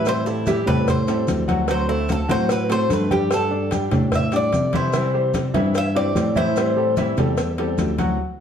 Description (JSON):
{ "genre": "latin, Cuban son and guajira", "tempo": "148 BPM", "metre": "4/4", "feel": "straight", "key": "unclear", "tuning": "A4 = 440 Hz", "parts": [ { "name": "Cuban tres", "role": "melody", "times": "0.0-6.9 s", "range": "E4 to E5", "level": "-23 LUFS", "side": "left 1 dB", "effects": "plate reverb" }, { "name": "nylon-string guitar", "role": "accompaniment", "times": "0.0-8.2 s", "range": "C3 to G4", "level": "-28 LUFS", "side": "left 2 dB", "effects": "none" }, { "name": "bright baby grand piano", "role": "arpeggios", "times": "0.0-8.2 s", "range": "E3 to G5", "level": "-26 LUFS", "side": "right 2 dB", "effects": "none" }, { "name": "barky tine electric piano", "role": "bass", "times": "0.0-8.2 s", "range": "D2 to C3", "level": "-23 LUFS", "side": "equal", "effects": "none" }, { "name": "congas", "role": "percussion", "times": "0.1-8.2 s", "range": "none", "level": "-25 LUFS", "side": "left 1 dB", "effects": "none" }, { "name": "cowbell", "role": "percussion", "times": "0.1-8.2 s", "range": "none", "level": "-30 LUFS", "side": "left 2 dB", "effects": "none" }, { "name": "maracas", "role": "percussion", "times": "0.1-8.2 s", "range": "none", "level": "-42 LUFS", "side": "right 6 dB", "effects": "none" } ], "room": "wet studio reverb, RT60 0.9 s", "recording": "heard from further back in the room", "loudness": "-18 LUFS", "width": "side -8 dB against mid", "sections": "0.0-8.4 A section", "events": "Cuban tres solo 0.0-8.4; band accent 8.2", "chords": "0.1 Am7; 1.7 D7; 3.3 Gsus2; 4.9 C; 6.6 Am7" }